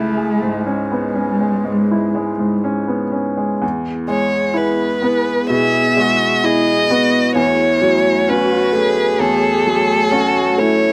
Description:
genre	neoclassical piano and strings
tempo	60-66 BPM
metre	4/4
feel	rubato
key	E major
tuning	A4 = 439 Hz
part	warm cello	second line	0.0-10.9 s	G#3 to G#4	-23 LUFS	equal	slapback echo
part	bright upright piano	accompaniment	0.0-10.9 s	C#2 to G#4	-20 LUFS	equal	none
part	hollow soft pad	sustained chords	3.6-10.9 s	A3 to C#5	-25 LUFS	equal	chorus
part	rich violin	melody	4.1-10.9 s	A4 to E5	-18 LUFS	equal	none
room	little or no reverb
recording	recorded outdoors, with no room sound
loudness	-16 LUFS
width	mono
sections	0.0-3.6 A section; 3.6-10.9 B section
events	none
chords	0.0 C#m; 3.6 E; 7.4 F#m7/E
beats	0.67 1.66 2.64 | 3.62 4.56 5.52 6.45 | 7.37 8.29 9.21 10.12

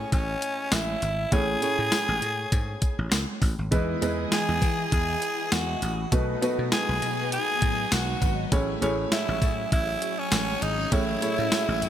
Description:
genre	1980s-style pop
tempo	100 BPM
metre	4/4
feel	swing 55% on 16ths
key	unclear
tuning	A4 = 440 Hz
part	growling tenor saxophone	melody	0.0-11.9 s	C#4 to G#4	-28 LUFS	equal	none
part	warm concert grand piano	accompaniment	0.0-11.9 s	A2 to D#5	-31 LUFS	right 1 dB	none
part	dry thumbed slap bass	bass	0.0-11.9 s	G#1 to E3	-30 LUFS	equal	none
part	clean 12-bit digital drum machine	drums	0.1-11.9 s	hi-hat, kick drum, snare drum, tambourine	-26 LUFS	equal	overdrive, gated reverb
part	tambourine	percussion	0.1-11.9 s	none	-44 LUFS	left 12 dB	none
part	phased string machine	sustained chords	3.7-11.9 s	E3 to D#5	-33 LUFS	left 1 dB	ensemble chorus, phaser
room	light reverb, small room ambience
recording	bright 1980s-style digital production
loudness	-23 LUFS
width	side -10 dB against mid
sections	0.0-11.9 A section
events	none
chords	0.0 Amaj7; 3.7 Emaj7; 6.1 B7; 8.5 Amaj7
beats	0.12 0.72 | 1.32 1.92 2.52 3.12 | 3.72 4.32 4.92 5.52 | 6.12 6.72 7.32 7.92 | 8.52 9.12 9.72 10.32 | 10.92 11.52

